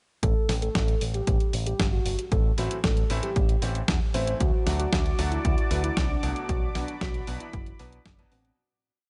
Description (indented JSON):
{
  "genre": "italo disco",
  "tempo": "115 BPM",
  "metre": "4/4",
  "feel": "straight",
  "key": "A dorian",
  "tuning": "A4 = 440 Hz",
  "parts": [
    { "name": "soft octave-layered synth lead", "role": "melody", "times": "0.2-8.5 s", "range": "C4 to C5", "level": "-36 LUFS", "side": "equal", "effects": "chorus, cassette tape, digital delay" },
    { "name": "picked electric bass with an envelope filter", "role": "bass", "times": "0.2-8.5 s", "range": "F#1 to E2", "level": "-32 LUFS", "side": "equal", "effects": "tube saturation" },
    { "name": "clean 12-bit digital drum machine", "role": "drums", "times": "0.2-8.6 s", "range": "hi-hat, snare drum", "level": "-34 LUFS", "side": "equal", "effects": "none" },
    { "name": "electronic kick drum", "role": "drums", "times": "0.2-8.2 s", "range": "none", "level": "-29 LUFS", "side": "equal", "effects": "none" },
    { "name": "bright baby grand piano", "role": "stabs", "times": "2.6-8.6 s", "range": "A2 to B4", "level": "-38 LUFS", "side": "equal", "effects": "none" },
    { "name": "lush unison pad", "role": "sustained chords", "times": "4.4-8.6 s", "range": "F#4 to D6", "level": "-38 LUFS", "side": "equal", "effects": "chorus" }
  ],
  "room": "little or no reverb",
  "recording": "nothing above 10.8 kHz",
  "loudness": "-26 LUFS",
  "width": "mono",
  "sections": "0.2-8.6 verse",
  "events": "fade-out 5.8-8.6",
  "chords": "0.2 Am; 4.4 D; 6.5 Bm"
}